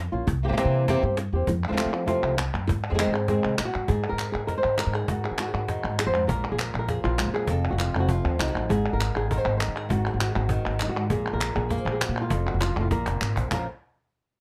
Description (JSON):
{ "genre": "flamenco", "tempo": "199 BPM", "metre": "4/4", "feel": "straight", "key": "unclear", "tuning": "A4 = 440 Hz", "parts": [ { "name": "upright bass", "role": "bass", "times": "0.0-13.7 s", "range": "F1 to F3", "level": "-30 LUFS", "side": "equal", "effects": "none" }, { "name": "flamenco guitar", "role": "melody", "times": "0.1-13.7 s", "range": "F2 to C5", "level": "-29 LUFS", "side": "equal", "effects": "none" }, { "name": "cajon", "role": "percussion", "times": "0.1-13.6 s", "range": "none", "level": "-34 LUFS", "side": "equal", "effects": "none" }, { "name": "palmas hand claps", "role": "percussion", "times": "1.6-13.6 s", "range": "none", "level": "-34 LUFS", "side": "equal", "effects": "none" } ], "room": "little or no reverb", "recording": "close, detailed microphones", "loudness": "-26 LUFS", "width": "mono", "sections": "0.0-3.9 A section; 3.9-13.5 B section", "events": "drum fill 13.1-13.5", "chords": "0.3 C7; 1.5 F; 2.7 Ab; 3.9 Ab5; 6.3 Bb5; 7.5 F; 8.7 Ab5; 11.1 Abadd9/Bb; 12.3 F; 12.9 Bbsus2; 13.5 N.C." }